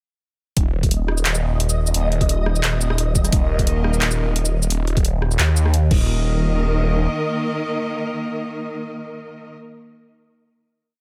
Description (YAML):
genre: half-time drum and bass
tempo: 174 BPM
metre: 4/4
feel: swing 54% on 16ths, half-time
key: unclear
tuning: A4 = 440 Hz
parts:
  - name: phased detuned saw bass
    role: bass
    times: 0.6-7.1 s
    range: Eb1 to Eb2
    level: -21 LUFS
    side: equal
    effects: phaser
  - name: drum and bass drum kit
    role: drums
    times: 0.6-6.0 s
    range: crash cymbal, handclaps, hi-hat, rim click, shaker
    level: -26 LUFS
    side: equal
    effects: overdrive
  - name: electronic kick drum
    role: drums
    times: 0.6-6.0 s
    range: none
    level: -21 LUFS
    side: equal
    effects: overdrive
  - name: flickering grainy texture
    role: texture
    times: 1.0-4.7 s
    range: Eb5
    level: -33 LUFS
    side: equal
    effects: built-in reverb
  - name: clear studio cello section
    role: sustained chords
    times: 3.3-9.5 s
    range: Eb3 to Eb5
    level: -27 LUFS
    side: equal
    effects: sidechain pumping
room: little or no reverb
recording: none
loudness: -20 LUFS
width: mono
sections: 0.6-6.1 drop; 6.1-8.8 final hit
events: drop 0.6-6.1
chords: 0.6 Eb5